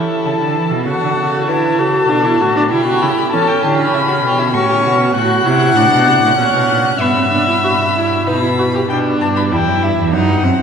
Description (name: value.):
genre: classical, baroque-style fugue for string quartet.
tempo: 98 BPM.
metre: 3/4.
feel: straight.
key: E minor from 5.2 s.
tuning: A4 = 445 Hz.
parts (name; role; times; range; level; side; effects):
rich violin; melody; 0.0-10.6 s; E5 to F#6; -18 LUFS; left 5 dB; none.
dark violin; second line; 0.0-8.9 s; E4 to F#5; -18 LUFS; left 1 dB; none.
rich viola; accompaniment; 0.0-10.6 s; B3 to G4; -16 LUFS; right 2 dB; none.
rich cello; bass; 0.0-10.5 s; E2 to E3; -18 LUFS; right 2 dB; none.
room: wet cathedral reverb, RT60 5.0 s.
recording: recorded in a church or concert hall.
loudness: -12 LUFS.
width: side -6 dB against mid.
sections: 0.0-8.9 A section; 8.9-10.6 B section.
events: none.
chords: 0.0 A/C#; 0.9 F#m/C#; 1.5 D; 2.7 Gmaj7/B; 3.3 C#(b5, no3); 4.5 F#m/A; 5.2 F#dim/A; 6.4 F#add11; 7.0 Em/G; 8.3 B; 8.9 Em.